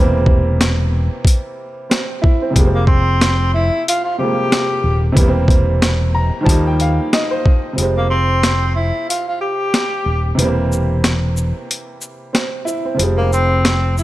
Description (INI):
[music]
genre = hip hop, boom-bap hip-hop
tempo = 92 BPM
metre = 4/4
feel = swing 58% on 16ths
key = F harmonic minor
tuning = A4 = 440 Hz
[part]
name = warm upright piano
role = accompaniment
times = 0.0-14.0 s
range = C3 to Bb5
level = -20 LUFS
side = right 1 dB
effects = cassette tape
[part]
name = fingered electric bass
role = bass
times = 0.0-14.0 s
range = Eb1 to Eb2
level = -16 LUFS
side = equal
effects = none
[part]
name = boom bap sampler-style drum kit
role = drums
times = 0.3-14.0 s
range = hi-hat, kick drum, shaker, snare drum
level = -16 LUFS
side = equal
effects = none
[part]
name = breathy tenor saxophone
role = melody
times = 2.7-14.0 s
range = Bb3 to G4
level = -19 LUFS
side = left 1 dB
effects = slapback echo
[sound]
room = little or no reverb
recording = none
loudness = -14 LUFS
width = side -16 dB against mid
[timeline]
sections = 0.0-7.8 A section; 7.8-14.0 A section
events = upright piano fill 5.8-7.8; break 7.8-14.0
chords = 0.0 C7/E; 2.6 Fmadd9; 5.2 C7/E; 6.5 Ebadd9; 7.8 Fmadd9; 10.4 C7/E; 13.0 Fmadd9